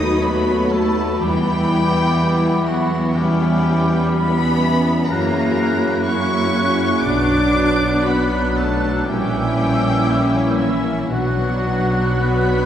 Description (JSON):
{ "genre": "classical", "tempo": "52-64 BPM", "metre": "4/4", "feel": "rubato", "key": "B minor from 3.1 s", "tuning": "A4 = 440 Hz", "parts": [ { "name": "warm chamber violin section", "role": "melody", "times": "0.0-12.7 s", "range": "E5 to D#6", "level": "-27 LUFS", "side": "left 4 dB", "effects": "none" }, { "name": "bright small flute group", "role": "second line", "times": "0.0-12.7 s", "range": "B5 to F#6", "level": "-27 LUFS", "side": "equal", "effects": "none" }, { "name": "mellow clarinet", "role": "second line", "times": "0.0-12.7 s", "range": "C#4 to F#4", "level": "-27 LUFS", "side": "left 1 dB", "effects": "none" }, { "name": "rich chamber violin section", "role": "second line", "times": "0.0-12.7 s", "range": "G3 to B4", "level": "-29 LUFS", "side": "left 2 dB", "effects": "none" }, { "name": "warm oboe", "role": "second line", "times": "0.0-12.7 s", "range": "E4 to D#5", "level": "-28 LUFS", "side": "right 1 dB", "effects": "none" }, { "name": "clear studio viola section", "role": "accompaniment", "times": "0.0-12.7 s", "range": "E3 to C#4", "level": "-24 LUFS", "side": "equal", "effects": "none" }, { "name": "dark French horn section", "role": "sustained chords", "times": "0.0-12.7 s", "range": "A3 to E4", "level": "-25 LUFS", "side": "left 2 dB", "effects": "none" }, { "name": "mellow trombone section", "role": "sustained chords", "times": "0.0-12.7 s", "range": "A#2 to F#3", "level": "-28 LUFS", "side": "right 2 dB", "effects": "none" }, { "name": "concert harp", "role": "arpeggios", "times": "0.0-12.7 s", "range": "F#2 to B5", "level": "-25 LUFS", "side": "left 1 dB", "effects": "none" }, { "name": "clear studio cello section", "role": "bass", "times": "0.0-12.7 s", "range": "E3 to D#4", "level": "-23 LUFS", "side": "right 1 dB", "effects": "none" }, { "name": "rich chamber double bass section", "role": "bass", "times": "0.0-12.7 s", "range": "A#1 to F#2", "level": "-25 LUFS", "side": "right 2 dB", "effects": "none" } ], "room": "wet concert hall reverb, RT60 2.3 s", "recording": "heard from further back in the room", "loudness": "-15 LUFS", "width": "side -10 dB against mid", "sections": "0.0-12.7 A section", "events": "none", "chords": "0.0 B7/D#; 1.2 Em; 3.1 C#m7b5/E; 5.1 F#7; 7.1 Bm; 9.1 A#dim7; 11.1 Bm" }